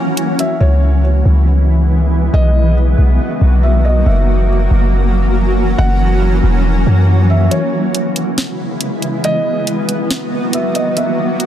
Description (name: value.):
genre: hip hop, atmospheric cloud-rap.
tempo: 139 BPM.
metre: 4/4.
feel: half-time.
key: B major.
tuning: A4 = 440 Hz.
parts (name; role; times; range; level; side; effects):
shimmering ambient pad; sustained chords; 0.0-11.5 s; C#3 to F#4; -16 LUFS; equal; chorus, built-in reverb.
smooth R&B drum kit; drums; 0.2-0.5, 7.5-11.5 s; hi-hat, snare drum; -19 LUFS; equal; none.
felt-muted upright piano; melody; 0.4-11.4 s; C#5 to F#5; -22 LUFS; equal; digital delay.
warm 808-style bass; bass; 0.6-7.5 s; E1 to F#2; -11 LUFS; equal; none.
room: little or no reverb.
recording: dense, heavily limited modern master.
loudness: -11 LUFS.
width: side -11 dB against mid.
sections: 0.6-7.5 A section; 7.5-11.5 B section.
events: break 0.0-0.6, 7.5-11.5.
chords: 0.0 F#7; 0.6 C#m7; 2.3 Bmaj7; 4.1 F#7; 7.5 C#m7; 9.2 Bmaj7.